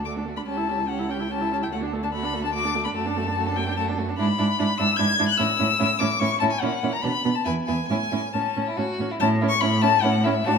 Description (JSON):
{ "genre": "quick classical-period movement for string quartet", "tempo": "145 BPM", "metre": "3/4", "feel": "rubato", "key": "D major, A major from 4.2 s", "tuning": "A4 = 440 Hz", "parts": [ { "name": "warm violin", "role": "second line", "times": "0.0-10.5 s", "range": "C#4 to A4", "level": "-32 LUFS", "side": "equal", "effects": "none" }, { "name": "warm viola", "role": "accompaniment", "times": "0.0-10.6 s", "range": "A3 to E4", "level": "-28 LUFS", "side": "right 5 dB", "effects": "none" }, { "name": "warm cello", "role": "bass", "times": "0.0-10.6 s", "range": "C#2 to B2", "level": "-26 LUFS", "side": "right 2 dB", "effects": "none" }, { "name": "warm violin", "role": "melody", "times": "0.1-10.6 s", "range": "E5 to G#6", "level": "-24 LUFS", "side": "left 6 dB", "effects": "none" } ], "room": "wet stone room reverb, RT60 1.3 s", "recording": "none", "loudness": "-21 LUFS", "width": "side -6 dB against mid", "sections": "0.0-9.2 A section; 9.2-10.6 B section", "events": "none", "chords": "0.5 A7/C#; 1.7 D; 3.0 D/F#; 4.2 E7/G#; 5.4 A; 6.6 F#7; 7.0 N.C.; 7.5 E; 7.9 A", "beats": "0.07 | 0.48 0.89 1.30 | 1.72 2.13 2.54 | 2.96 3.37 3.77 | 4.18 4.59 4.99 | 5.39 5.80 6.21 | 6.63 7.04 7.46 | 7.90 8.34 8.77 | 9.20 9.62 10.04 | 10.47" }